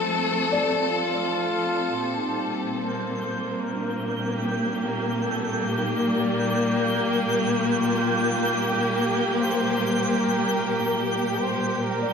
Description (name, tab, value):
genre	ambient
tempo	73 BPM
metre	4/4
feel	straight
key	Eb lydian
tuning	A4 = 440 Hz
part	rich chamber string section	sustained chords	0.0-12.1 s	Bb2 to A4	-23 LUFS	left 1 dB	none
part	felt-muted upright piano	arpeggios	0.0-12.1 s	G3 to G6	-34 LUFS	right 1 dB	diffuse ambient delay
part	mellow flugelhorn	melody	0.8-12.1 s	F4 to D5	-31 LUFS	right 1 dB	diffuse ambient delay
part	twinkling granular texture	texture	2.7-12.1 s	G6	-31 LUFS	right 3 dB	built-in reverb, wide subtle chorus
room	wet lush hall reverb, RT60 3.0 s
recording	dreamy mix soaked in reverb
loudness	-22 LUFS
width	side -6 dB against mid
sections	0.0-2.0 A section; 2.0-12.1 B section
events	fade-in on flugelhorn 2.0-12.1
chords	0.0 F; 2.0 Eb